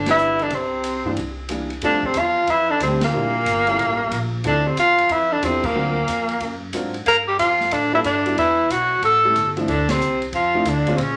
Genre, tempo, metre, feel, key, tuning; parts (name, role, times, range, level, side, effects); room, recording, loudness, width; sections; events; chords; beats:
jazz, small-group swing and bop; 183 BPM; 4/4; swing 64% on 8ths; A4 = 440 Hz
warm tenor saxophone; melody; 0.0-11.2 s; Bb3 to Bb4; -21 LUFS; equal
warm baritone saxophone; second line; 0.0-11.2 s; Bb2 to Bb3; -31 LUFS; equal
upright bass; bass; 0.0-11.2 s; G1 to Bb2; -30 LUFS; equal
warm upright piano; accompaniment; 0.1-11.0 s; E3 to A#4; -29 LUFS; equal
open jazz drum kit; drums; 0.1-11.1 s; crash cymbal, hi-hat, kick drum, ride cymbal, rim click, snare drum; -35 LUFS; equal
moderate large studio reverb, RT60 0.9 s; -20 LUFS; mono
0.0-1.8 A section; 1.8-11.2 B section
band accent 0.0, 3.0, 5.6, 9.8
0.0 Cmaj7; 1.2 C9; 1.8 F6; 3.1 Em7b5; 3.8 A7b9; 4.4 Dm9; 5.8 D7alt; 7.1 G7sus2; 8.4 E5; 9.0 A7; 9.7 Dm7
0.18 | 0.51 0.84 1.17 1.50 | 1.83 2.15 2.48 2.81 | 3.14 3.46 3.79 4.12 | 4.45 4.78 5.10 5.43 | 5.76 6.08 6.41 6.74 | 7.07 7.39 7.72 8.05 | 8.37 8.70 9.03 9.35 | 9.68 10.01 10.34 10.66 | 10.99